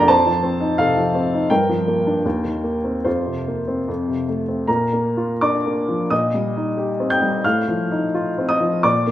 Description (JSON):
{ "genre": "classical, romantic character piece for solo piano", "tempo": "70-92 BPM", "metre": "2/4", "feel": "rubato", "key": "unclear", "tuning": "A4 = 440 Hz", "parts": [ { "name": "warm upright piano", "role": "solo", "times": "0.0-9.1 s", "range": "Bb1 to G6", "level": "-17 LUFS", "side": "equal", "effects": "none" } ], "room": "wet recital hall reverb, RT60 1.4 s", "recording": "none", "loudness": "-18 LUFS", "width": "side -12 dB against mid", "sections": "0.0-4.7 A section; 4.7-9.1 B section", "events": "none", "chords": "0.1 F7; 1.5 Gm7; 2.2 Eb6; 3.1 Fsus4; 3.9 F; 4.7 Bb; 6.1 Cm7/Bb; 7.4 F7/A", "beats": "| 0.09 0.78 | 1.50 2.24 | 3.05 3.88 | 4.67 5.41 | 6.11 6.77 | 7.44 8.15 | 8.85" }